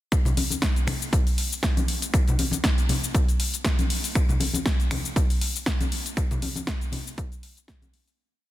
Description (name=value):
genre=nu-disco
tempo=119 BPM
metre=4/4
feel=swing 55% on 16ths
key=none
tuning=none
part: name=electronic kick drum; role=drums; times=0.1-7.8 s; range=none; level=-24 LUFS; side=equal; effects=studio reverb
part: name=house drum kit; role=drums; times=0.1-8.2 s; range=finger snaps, hi-hat, shaker, snare drum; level=-28 LUFS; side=left 1 dB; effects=studio reverb
part: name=congas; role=percussion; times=0.3-7.9 s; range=none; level=-30 LUFS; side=left 2 dB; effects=none
room=digital ambience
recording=dense, heavily limited modern master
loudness=-22 LUFS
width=side -15 dB against mid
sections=0.1-8.2 drop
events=drop 0.1-8.2; fade-out 5.5-8.2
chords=none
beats=| 0.12 0.62 1.13 1.63 | 2.14 2.64 3.15 3.65 | 4.16 4.66 5.16 5.67 | 6.17 6.68 7.18 7.68